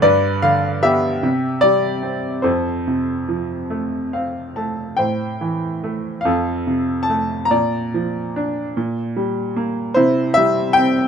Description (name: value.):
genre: classical, lyrical solo piano.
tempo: 48 BPM (dotted quarters).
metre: 6/8.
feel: rubato.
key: unclear.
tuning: A4 = 439 Hz.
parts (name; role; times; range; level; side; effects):
bright baby grand piano; solo; 0.0-11.1 s; F2 to Bb5; -17 LUFS; equal; none.
room: little or no reverb.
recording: close, detailed microphones.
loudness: -17 LUFS.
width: side -7 dB against mid.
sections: 0.0-11.1 A section.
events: grand piano fill 3.7-5.0.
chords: 0.0 G; 1.2 C5; 2.5 F; 5.0 Am; 6.3 F; 7.5 Bb; 8.8 Gm/Bb; 10.0 C.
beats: | 0.03 1.24 | 2.46 3.72 | 5.00 6.27 | 7.52 8.76 | 9.97.